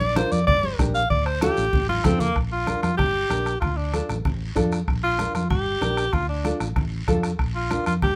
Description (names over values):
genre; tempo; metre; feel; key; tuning
latin, cumbia; 191 BPM; 4/4; straight; unclear; A4 = 440 Hz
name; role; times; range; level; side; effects
bright alto saxophone; melody; 0.0-8.2 s; Bb3 to F5; -26 LUFS; equal; none
hollow-body short-scale fingered electric bass; bass; 0.0-8.2 s; G1 to F2; -29 LUFS; equal; none
congas; percussion; 0.0-8.2 s; none; -33 LUFS; equal; none
nylon-string guitar; accompaniment; 0.2-7.9 s; D4 to Bb4; -29 LUFS; equal; none
bombo; percussion; 0.2-8.2 s; none; -29 LUFS; equal; none
guiro; percussion; 0.2-8.2 s; none; -43 LUFS; equal; none
room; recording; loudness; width
light reverb; none; -23 LUFS; mono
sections
0.0-2.4 A section; 2.4-8.2 B section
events
alto saxophone solo 0.0-2.4; drum fill 1.9-2.4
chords
0.5 Gm; 1.1 Dm; 2.4 Bb; 3.0 Gm; 3.6 Dm; 4.9 Bb; 5.5 Gm; 6.1 Dm; 7.4 Bb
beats
0.16 0.47 0.79 | 1.10 1.42 1.73 2.05 | 2.36 2.67 2.99 3.30 | 3.62 3.93 4.25 4.56 | 4.88 5.19 5.51 5.82 | 6.14 6.45 6.76 7.08 | 7.39 7.71 8.02